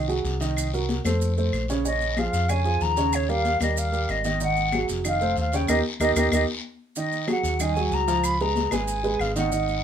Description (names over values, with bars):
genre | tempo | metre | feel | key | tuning
Afro-Cuban jazz | 188 BPM | 4/4 | straight | Ab mixolydian | A4 = 440 Hz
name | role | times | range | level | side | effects
warm upright piano | accompaniment | 0.0-9.8 s | Db3 to F5 | -26 LUFS | right 4 dB | none
fingered electric bass | bass | 0.0-9.8 s | F1 to F2 | -27 LUFS | left 1 dB | none
congas | percussion | 0.1-9.8 s | none | -32 LUFS | left 5 dB | none
maracas | percussion | 0.1-9.8 s | none | -36 LUFS | right 4 dB | none
guiro | percussion | 0.2-9.8 s | none | -37 LUFS | left 5 dB | none
claves | percussion | 0.6-9.4 s | none | -34 LUFS | left 4 dB | none
silver concert flute | melody | 1.9-9.8 s | Db5 to Cb6 | -26 LUFS | left 1 dB | none
room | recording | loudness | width
light reverb | minimal, uncompressed stereo recording | -22 LUFS | side -8 dB against mid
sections
0.0-7.0 A section; 7.0-9.8 A section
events
band accent 5.7-7.0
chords
0.0 Ab7; 0.6 Cm7b5; 1.2 F; 1.8 Bbm7; 3.1 Eb9; 4.4 Ab5; 5.0 F7; 5.7 Eb; 7.0 Absus2; 8.2 Db9